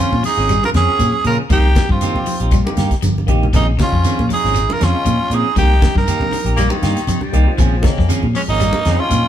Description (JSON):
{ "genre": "afrobeat", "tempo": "118 BPM", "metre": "4/4", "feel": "swing 55% on 16ths", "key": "Bb dorian", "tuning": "A4 = 441 Hz", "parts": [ { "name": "raspy tenor saxophone", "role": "melody", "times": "0.0-9.3 s", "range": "Db4 to Bb4", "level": "-19 LUFS", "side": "right 2 dB", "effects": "none" }, { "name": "brilliant trombone", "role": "second line", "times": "0.0-9.3 s", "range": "Ab3 to F4", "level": "-27 LUFS", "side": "right 2 dB", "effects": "none" }, { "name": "semi-hollow electric guitar", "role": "arpeggios", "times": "0.0-9.3 s", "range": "Db3 to G3", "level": "-26 LUFS", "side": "left 4 dB", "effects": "spring reverb" }, { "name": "clean electric guitar", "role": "stabs", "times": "0.0-9.0 s", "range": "F3 to Ab4", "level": "-24 LUFS", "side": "right 5 dB", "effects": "none" }, { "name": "congas", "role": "percussion", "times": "0.0-9.2 s", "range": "none", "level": "-26 LUFS", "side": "right 2 dB", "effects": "none" }, { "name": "shekere", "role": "percussion", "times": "0.0-9.2 s", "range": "none", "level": "-24 LUFS", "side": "right 2 dB", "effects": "none" }, { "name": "fingered electric bass", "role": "bass", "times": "0.1-9.2 s", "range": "G1 to C3", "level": "-17 LUFS", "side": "equal", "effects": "none" }, { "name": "damped 70s drum kit", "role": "drums", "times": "0.2-9.2 s", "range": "hi-hat, kick drum, snare drum", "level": "-19 LUFS", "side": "left 1 dB", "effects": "none" }, { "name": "barky tine electric piano", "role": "accompaniment", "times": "0.4-9.2 s", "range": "F3 to Ab4", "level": "-30 LUFS", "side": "left 4 dB", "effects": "overdrive, phaser" }, { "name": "raspy baritone saxophone", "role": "second line", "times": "6.6-8.2 s", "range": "Eb3 to Bb3", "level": "-24 LUFS", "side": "left 4 dB", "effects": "none" } ], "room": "moderate stone room reverb, RT60 1.2 s", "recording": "band playing live in one room", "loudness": "-13 LUFS", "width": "side -10 dB against mid", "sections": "0.0-9.3 A section", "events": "drum fill 3.2-3.5", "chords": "0.0 Bbm9; 1.5 Cm7; 3.5 Bbm9; 5.6 Cm7; 7.6 Bbm9" }